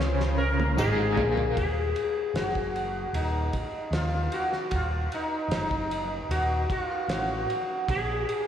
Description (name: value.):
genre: psychedelic rock.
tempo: 76 BPM.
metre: 4/4.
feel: straight.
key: Eb dorian.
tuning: A4 = 440 Hz.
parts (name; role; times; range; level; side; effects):
rich studio string section; sustained chords; 0.0-1.5 s; F4 to C5; -38 LUFS; right 2 dB; none.
crunchy overdriven guitar; riff; 0.0-1.6 s; Ab2 to Db4; -29 LUFS; equal; tremolo.
picked electric bass; bass; 0.0-8.2 s; Eb1 to Eb2; -29 LUFS; equal; none.
cloth-damped thuddy drum kit; drums; 0.0-8.5 s; kick drum, ride cymbal, snare drum, toms; -33 LUFS; right 1 dB; none.
sitar; melody; 0.4-8.5 s; Eb4 to Bb4; -28 LUFS; left 1 dB; diffuse ambient delay.
tambourine; percussion; 0.8-1.0 s; none; -51 LUFS; left 5 dB; none.
room: wet lush hall reverb, RT60 2.9 s.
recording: dreamy mix soaked in reverb, studio reverb.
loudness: -25 LUFS.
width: side -9 dB against mid.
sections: 0.0-1.6 A section; 1.6-8.5 B section.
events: drum fill 0.0-1.6.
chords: 0.0 Ab6; 1.6 Ebm; 7.9 Bb7(no3).